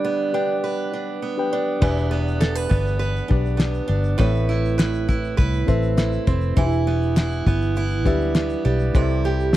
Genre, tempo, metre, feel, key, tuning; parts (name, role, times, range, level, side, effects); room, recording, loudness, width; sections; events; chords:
acoustic pop; 101 BPM; 4/4; straight; A4 = 440 Hz
picked steel-string acoustic guitar; accompaniment; 0.0-9.6 s; E2 to B4; -24 LUFS; right 5 dB
reed electric piano; accompaniment; 0.0-9.6 s; C4 to G5; -28 LUFS; left 7 dB
vintage muted fingered electric bass; bass; 1.8-9.6 s; E1 to D2; -22 LUFS; equal
cloth-damped thuddy drum kit; drums; 1.8-9.6 s; crash cymbal, kick drum, shaker, snare drum; -20 LUFS; equal
group handclap; percussion; 2.4-9.6 s; -37 LUFS; left 8 dB
studio ambience; dry, close 1970s-style studio recording; -18 LUFS; side -14 dB against mid
0.0-1.8 A section; 1.8-9.6 B section
break 0.0-1.8
0.0 G; 1.8 Em7; 4.2 Amadd9; 6.6 Em7; 8.9 C6